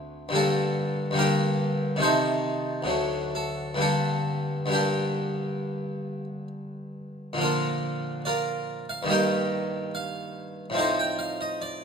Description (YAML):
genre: classical, baroque-style suite movement for harpsichord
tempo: 66-73 BPM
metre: 4/4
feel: rubato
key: G minor, Bb major from 7.4 s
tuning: A4 = 440 Hz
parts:
  - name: harpsichord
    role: solo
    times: 0.0-11.8 s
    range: D2 to G5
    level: -25 LUFS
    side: equal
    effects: none
room: wet large studio reverb, RT60 1.4 s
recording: none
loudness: -24 LUFS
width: side -6 dB against mid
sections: 0.0-7.4 A section; 7.4-11.8 A section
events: none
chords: 0.3 Gm; 2.0 Adim/C; 2.9 D7; 3.8 Gm; 7.4 Bb; 9.1 Eb/G; 10.8 F7/A